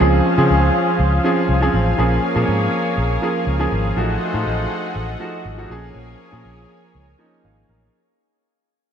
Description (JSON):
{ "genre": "pop", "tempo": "121 BPM", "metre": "4/4", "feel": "straight", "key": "Bb minor", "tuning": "A4 = 440 Hz", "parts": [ { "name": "clear concert grand piano", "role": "accompaniment", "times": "0.0-8.2 s", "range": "F3 to F5", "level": "-20 LUFS", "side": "right 1 dB", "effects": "none" }, { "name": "lush unison pad", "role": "sustained chords", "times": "0.0-7.9 s", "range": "F4 to Ab5", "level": "-25 LUFS", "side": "left 1 dB", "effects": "chorus" }, { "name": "warm horn section", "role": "stabs", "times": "0.0-7.6 s", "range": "F3 to Db5", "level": "-27 LUFS", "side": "left 2 dB", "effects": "none" }, { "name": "vintage muted fingered electric bass", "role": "bass", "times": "0.0-7.9 s", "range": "Ab1 to Db3", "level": "-20 LUFS", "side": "equal", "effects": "none" } ], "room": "moderate lush hall reverb, RT60 3.1 s", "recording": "dark, warm production", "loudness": "-16 LUFS", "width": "side -8 dB against mid", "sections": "0.0-7.9 A section", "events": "fade-out 0.0-7.9", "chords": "0.0 Dbmaj7; 2.0 Bbm7; 4.0 F7b9/A; 5.7 Bbm7", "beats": "| 0.00 0.50 0.99 1.49 | 1.99 2.48 2.98 3.48 | 3.97 4.47 4.96 5.46 | 5.95 6.45 6.95 7.44" }